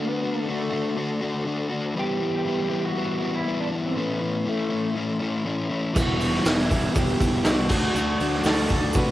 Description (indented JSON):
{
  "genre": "indie rock",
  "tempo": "120 BPM",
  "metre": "4/4",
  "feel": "straight",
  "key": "E minor",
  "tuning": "A4 = 440 Hz",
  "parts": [
    { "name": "electric guitar through a small old amp", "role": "melody", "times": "0.0-9.1 s", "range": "A3 to B4", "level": "-30 LUFS", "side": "equal", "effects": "cassette tape, tape echo" },
    { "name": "string machine, full ensemble", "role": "sustained chords", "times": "0.0-9.1 s", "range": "G3 to B5", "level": "-40 LUFS", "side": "right 1 dB", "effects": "none" },
    { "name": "overdriven semi-hollow guitar", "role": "riff", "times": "0.0-9.1 s", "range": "A2 to F#4", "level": "-26 LUFS", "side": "left 2 dB", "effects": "cassette tape" },
    { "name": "bell-like tine electric piano", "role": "second line", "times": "6.0-9.1 s", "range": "B3 to F#4", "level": "-34 LUFS", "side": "left 2 dB", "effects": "none" },
    { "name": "overdriven electric guitar", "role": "riff", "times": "6.0-9.1 s", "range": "D3 to G4", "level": "-29 LUFS", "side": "right 5 dB", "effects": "wide subtle chorus, cassette tape, tape echo" },
    { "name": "fuzz fingered electric bass", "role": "bass", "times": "6.0-9.1 s", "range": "E1 to C3", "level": "-30 LUFS", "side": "equal", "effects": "overdrive" },
    { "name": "raw garage drum kit", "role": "drums", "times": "6.0-9.1 s", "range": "crash cymbal, hi-hat, kick drum, snare drum", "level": "-23 LUFS", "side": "equal", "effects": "cassette tape" },
    { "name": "tube shaker", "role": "percussion", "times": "6.0-9.1 s", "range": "none", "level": "-41 LUFS", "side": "right 5 dB", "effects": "none" }
  ],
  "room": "small room reverb",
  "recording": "home recording on cassette",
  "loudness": "-22 LUFS",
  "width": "side -14 dB against mid",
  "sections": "0.0-9.1 A section",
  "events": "none",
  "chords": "0.0 D; 2.0 Em; 4.0 Aadd9; 6.0 Em; 7.7 D"
}